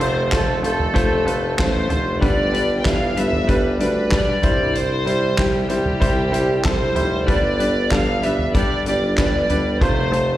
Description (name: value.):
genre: piano-driven pop.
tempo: 95 BPM.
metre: 4/4.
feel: straight.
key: G mixolydian.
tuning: A4 = 440 Hz.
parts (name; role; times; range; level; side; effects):
warm studio violin section; melody; 0.0-10.4 s; G4 to G5; -23 LUFS; equal; none.
clear concert grand piano; accompaniment; 0.0-10.4 s; G2 to D5; -22 LUFS; equal; none.
warm tuba; bass; 0.0-10.4 s; F1 to D2; -23 LUFS; equal; none.
soft-mallet drum kit; drums; 0.0-10.3 s; handclaps, hi-hat, kick drum, snare drum, toms; -22 LUFS; equal; none.
room: light reverb.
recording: live gig heard through the venue's PA, recital hall reverb.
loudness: -16 LUFS.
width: side -14 dB against mid.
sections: 0.0-10.4 A section.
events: none.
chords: 0.0 F; 2.2 G; 4.4 C; 7.3 G; 9.8 F.